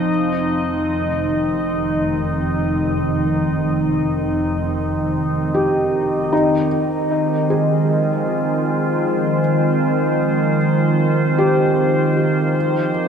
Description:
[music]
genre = ambient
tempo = free time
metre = none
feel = none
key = F minor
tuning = A4 = 436 Hz
[part]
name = evolving wavetable pad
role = sustained chords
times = 0.0-13.1 s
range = F2 to Eb5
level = -18 LUFS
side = equal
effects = chorus, built-in reverb
[part]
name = felt-muted upright piano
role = arpeggios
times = 0.0-0.1, 5.5-13.1 s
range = Eb4 to Ab4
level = -21 LUFS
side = left 1 dB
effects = tape echo
[part]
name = dark studio double bass section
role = bass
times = 0.0-6.3 s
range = F1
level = -25 LUFS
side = equal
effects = none
[part]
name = organ-like drone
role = drone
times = 0.7-13.1 s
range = F3 to C4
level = -28 LUFS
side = right 1 dB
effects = ensemble chorus, built-in reverb
[sound]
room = wet cathedral reverb, RT60 6.3 s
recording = dark, warm production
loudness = -16 LUFS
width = side -7 dB against mid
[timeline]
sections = 0.0-6.3 A section; 6.3-13.1 B section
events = none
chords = 0.1 Cmadd11/F; 6.3 Fm7; 12.6 Eb6/F

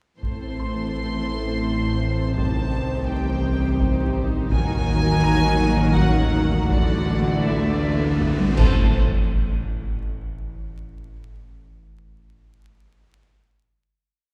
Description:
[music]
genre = cinematic, suspense film score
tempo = 83 BPM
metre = 3/4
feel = straight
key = A dorian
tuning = A4 = 440 Hz
[part]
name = warm symphonic violin section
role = melody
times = 0.2-9.0 s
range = E5 to C6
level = -33 LUFS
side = equal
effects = none
[part]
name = warm studio violin section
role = second line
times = 0.2-9.0 s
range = F#4 to D5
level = -34 LUFS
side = equal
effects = none
[part]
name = dark symphonic viola section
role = accompaniment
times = 0.2-9.0 s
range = Eb3 to E4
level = -34 LUFS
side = equal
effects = none
[part]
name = clear trombone section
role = sustained chords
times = 0.2-8.9 s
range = A2 to A3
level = -33 LUFS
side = equal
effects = none
[part]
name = dark French horn section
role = sustained chords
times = 0.2-8.9 s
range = A3 to E4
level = -32 LUFS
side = equal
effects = none
[part]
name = rich symphonic cello section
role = bass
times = 0.2-9.0 s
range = A2 to D#3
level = -30 LUFS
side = equal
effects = none
[part]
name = warm chamber double bass section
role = bass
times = 0.2-9.0 s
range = A1 to D#2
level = -30 LUFS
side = equal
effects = none
[part]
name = analog drone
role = drone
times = 0.8-9.0 s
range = A1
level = -28 LUFS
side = equal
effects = chorus
[part]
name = taiko ensemble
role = drums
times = 0.2-10.0 s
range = none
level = -29 LUFS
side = equal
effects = none
[part]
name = bright concert grand piano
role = texture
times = 0.6-9.0 s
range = A#5 to C6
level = -39 LUFS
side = equal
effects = none
[part]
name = cymbal swell, clash cymbals and concert bass drum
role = percussion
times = 4.5-10.0 s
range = none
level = -29 LUFS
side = equal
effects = none
[part]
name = riser and impact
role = sound effects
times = 6.9-10.7 s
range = none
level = -33 LUFS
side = equal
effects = none
[sound]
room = wet concert hall reverb, RT60 2.5 s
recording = heard from further back in the room, vinyl crackle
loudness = -21 LUFS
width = mono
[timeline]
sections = 0.2-8.9 A section; 8.9-11.1 final hit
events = drum fill 8.4-8.9; band accent 8.9-9.7; impact 8.9-11.1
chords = 0.2 Am; 2.4 Cm; 4.5 D#m; 6.7 Dadd9/A; 8.6 Am; 8.9 N.C.

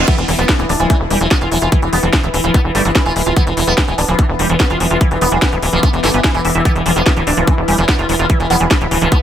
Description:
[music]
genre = psychedelic trance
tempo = 146 BPM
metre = 4/4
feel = straight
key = unclear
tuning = A4 = 441 Hz
[part]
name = sitar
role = melody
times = 0.0-9.2 s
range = E3 to D4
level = -20 LUFS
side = right 1 dB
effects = phaser, sidechain pumping, tape echo
[part]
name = evolving wavetable pad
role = sustained chords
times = 0.0-9.2 s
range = E3 to E4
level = -24 LUFS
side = left 2 dB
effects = chorus, built-in reverb, sidechain pumping
[part]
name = liquid acid bass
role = riff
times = 0.0-9.2 s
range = E3 to F4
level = -20 LUFS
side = equal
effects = chorus, auto-pan, cassette tape, sidechain pumping, ping-pong delay
[part]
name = tight sequencer bass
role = bass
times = 0.0-9.1 s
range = D1 to G1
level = -18 LUFS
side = equal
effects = none
[part]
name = reverse cymbal and downlifter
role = sound effects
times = 0.0-3.4 s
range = none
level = -26 LUFS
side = right 2 dB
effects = none
[part]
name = warbly tape-like pad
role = texture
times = 0.0-9.2 s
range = E4 to D6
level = -23 LUFS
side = equal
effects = chorus, built-in reverb, sidechain pumping
[part]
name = drum and bass drum kit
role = drums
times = 0.1-9.2 s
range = crash cymbal, hi-hat, snare drum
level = -19 LUFS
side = equal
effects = none
[part]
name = electronic kick drum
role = drums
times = 0.1-9.2 s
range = none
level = -13 LUFS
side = equal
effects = none
[sound]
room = digital ambience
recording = none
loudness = -11 LUFS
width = side -10 dB against mid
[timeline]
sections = 0.1-9.2 A section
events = band accent 0.0; drop 0.1-9.2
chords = 0.1 E5

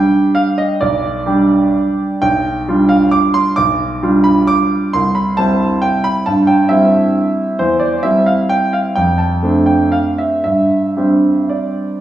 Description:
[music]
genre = classical, piano waltz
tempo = 108-143 BPM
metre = 3/4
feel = rubato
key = C major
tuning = A4 = 440 Hz
[part]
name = clear grand piano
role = solo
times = 0.0-12.0 s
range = B1 to D6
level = -12 LUFS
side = right 1 dB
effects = none
[sound]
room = wet recital hall reverb, RT60 1.3 s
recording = heard from further back in the room, small room ambience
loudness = -12 LUFS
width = side -12 dB against mid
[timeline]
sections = 0.0-12.0 A section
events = none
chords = 0.0 G; 2.2 G7/B; 4.9 C; 7.6 C/E; 9.0 Dm7/F; 10.4 Gsus4

